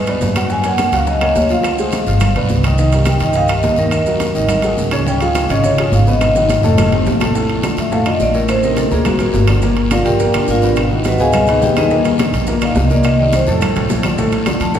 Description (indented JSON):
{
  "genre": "Afro-Cuban jazz",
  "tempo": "210 BPM",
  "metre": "4/4",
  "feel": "straight",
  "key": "Bb major from 7.3 s",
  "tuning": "A4 = 444 Hz",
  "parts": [
    { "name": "vibraphone with medium hard mallets", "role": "melody", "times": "0.0-14.8 s", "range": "D4 to A5", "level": "-18 LUFS", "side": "left 1 dB", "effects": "none" },
    { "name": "warm baby grand piano", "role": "accompaniment", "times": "0.0-14.8 s", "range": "A2 to F#5", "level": "-18 LUFS", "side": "equal", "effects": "none" },
    { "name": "upright bass", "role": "bass", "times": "0.0-14.8 s", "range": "F1 to G#2", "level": "-18 LUFS", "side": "equal", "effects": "none" },
    { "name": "bongos", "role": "percussion", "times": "0.1-14.8 s", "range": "none", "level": "-27 LUFS", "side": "left 3 dB", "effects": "none" },
    { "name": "congas", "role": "percussion", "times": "0.1-14.8 s", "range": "none", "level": "-24 LUFS", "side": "equal", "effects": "none" },
    { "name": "maracas", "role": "percussion", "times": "0.1-14.8 s", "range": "none", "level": "-35 LUFS", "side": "right 6 dB", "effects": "none" },
    { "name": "timbales", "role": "percussion", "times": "0.1-14.8 s", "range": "none", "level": "-24 LUFS", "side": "right 3 dB", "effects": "none" },
    { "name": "guiro", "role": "percussion", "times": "0.2-14.8 s", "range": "none", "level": "-32 LUFS", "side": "left 4 dB", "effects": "none" },
    { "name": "claves", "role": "percussion", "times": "0.4-14.6 s", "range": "none", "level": "-31 LUFS", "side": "left 2 dB", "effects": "none" }
  ],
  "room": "wet church reverb, RT60 3.2 s",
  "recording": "recorded in a church or concert hall",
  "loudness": "-12 LUFS",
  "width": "side -9 dB against mid",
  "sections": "0.0-7.3 A section; 7.3-14.8 B section",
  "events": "drum fill 6.2-7.3; vibraphone solo 7.3-14.8",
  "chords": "0.0 E9 (rootless); 0.5 Gbmaj7; 1.6 Dm7b5; 2.2 G7; 2.8 Cm7; 3.9 Ebm; 4.5 Absus2; 5.1 Db; 6.2 Abm7; 6.8 F7; 7.3 Bbmaj7; 8.5 Adim; 9.1 Daug; 9.6 Gm7; 10.8 Abm7; 11.3 Db9; 11.9 Eb5; 13.0 Cm7; 13.6 Bbmaj7"
}